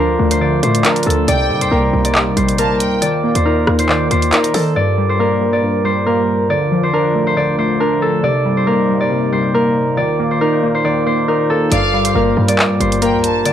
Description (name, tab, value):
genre	hip hop, drill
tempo	138 BPM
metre	4/4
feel	half-time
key	G minor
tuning	A4 = 440 Hz
part	concert harp	melody	0.0-13.5 s	A4 to D5	-16 LUFS	equal	low-pass filter
part	warbly lo-fi synth keys	accompaniment	0.0-13.5 s	G2 to Eb4	-17 LUFS	left 1 dB	chorus, low-pass filter
part	mellow French horn section	sustained chords	0.0-13.5 s	C3 to Bb4	-26 LUFS	equal	none
part	short 808-style bass	bass	0.0-4.8, 11.7-13.4 s	G1 to Eb3	-19 LUFS	equal	none
part	drill drum kit	drums	0.3-4.6, 11.7-13.5 s	handclaps, hi-hat, rim click	-17 LUFS	equal	none
part	warm studio violin section	second line	1.3-3.0, 11.7-13.4 s	F5 to A5	-23 LUFS	right 1 dB	analog delay
room	light reverb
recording	dry, gritty hardware recording, cassette tape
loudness	-13 LUFS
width	side -10 dB against mid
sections	0.0-4.8 A section; 4.8-13.5 A section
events	none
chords	0.0 Dm; 1.3 Cm7; 3.0 Ebsus2; 4.8 Gm7; 6.5 Dm; 8.2 Cm7; 10.0 Ebsus2; 11.7 Gm7